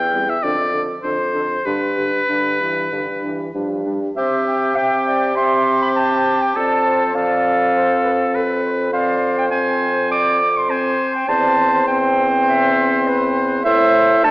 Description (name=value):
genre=quick classical-period movement for wind quintet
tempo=101 BPM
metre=4/4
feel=straight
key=C major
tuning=A4 = 444 Hz
part: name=clear oboe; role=second line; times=0.0-14.3 s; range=G4 to G5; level=-20 LUFS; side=equal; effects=none
part: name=dark bassoon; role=bass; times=0.0-14.3 s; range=E2 to A3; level=-22 LUFS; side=equal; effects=none
part: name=concert flute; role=melody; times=0.1-14.3 s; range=E4 to G5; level=-25 LUFS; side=left 2 dB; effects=none
part: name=dark clarinet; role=accompaniment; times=0.1-14.3 s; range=C4 to D6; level=-19 LUFS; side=right 1 dB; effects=none
part: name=warm French horn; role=accompaniment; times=0.1-14.3 s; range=D3 to E4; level=-25 LUFS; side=equal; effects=none
room=wet scoring stage reverb, RT60 1.7 s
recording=small speaker sound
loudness=-15 LUFS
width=side -20 dB against mid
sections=0.0-4.2 A section; 4.2-14.3 B section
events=none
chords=0.4 Dm/F; 1.7 G; 4.2 C; 6.6 F; 8.9 Fm; 11.3 C/E; 13.7 Am